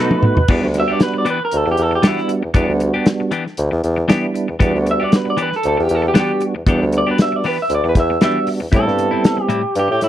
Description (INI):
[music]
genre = straight-eighth soul blues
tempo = 116 BPM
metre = 4/4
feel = swing 54% on 16ths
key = E minor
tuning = A4 = 441 Hz
[part]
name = electric guitar through a small old amp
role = melody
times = 0.0-10.1 s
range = E4 to E5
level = -19 LUFS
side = right 1 dB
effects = none
[part]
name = percussive tonewheel organ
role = accompaniment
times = 0.0-9.5 s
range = G3 to F#4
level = -20 LUFS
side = right 3 dB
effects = slow rotary speaker, chorus vibrato
[part]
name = clean electric guitar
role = stabs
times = 0.0-9.9 s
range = A2 to G4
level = -22 LUFS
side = left 4 dB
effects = none
[part]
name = warm soul drum kit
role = drums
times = 0.1-10.1 s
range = crash cymbal, hi-hat, kick drum, snare drum, toms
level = -15 LUFS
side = equal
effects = none
[part]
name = clear bassoon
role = bass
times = 0.4-10.1 s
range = D2 to B2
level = -18 LUFS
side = equal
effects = none
[sound]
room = studio reverb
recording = dry, close 1970s-style studio recording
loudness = -14 LUFS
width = side -12 dB against mid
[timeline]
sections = 0.5-10.1 A section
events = drum fill 0.0-0.5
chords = 0.5 Em7; 8.7 Am7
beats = | 0.49 1.00 1.52 2.03 | 2.55 3.06 3.58 4.09 | 4.61 5.12 5.64 6.15 | 6.67 7.18 7.70 8.21 | 8.73 9.24 9.76